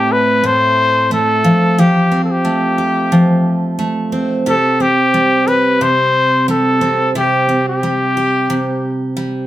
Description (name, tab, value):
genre	pop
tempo	89 BPM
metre	4/4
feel	straight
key	unclear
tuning	A4 = 438 Hz
part	breathy trumpet	melody	0.0-9.0 s	G4 to C5	-14 LUFS	left 1 dB	none
part	picked steel-string acoustic guitar	accompaniment	0.0-9.5 s	A2 to B4	-15 LUFS	right 1 dB	none
room	moderate studio reverb, RT60 0.6 s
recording	none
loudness	-12 LUFS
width	side -14 dB against mid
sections	0.0-9.5 A section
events	none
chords	0.0 Amadd9; 1.4 Fadd9; 4.5 C5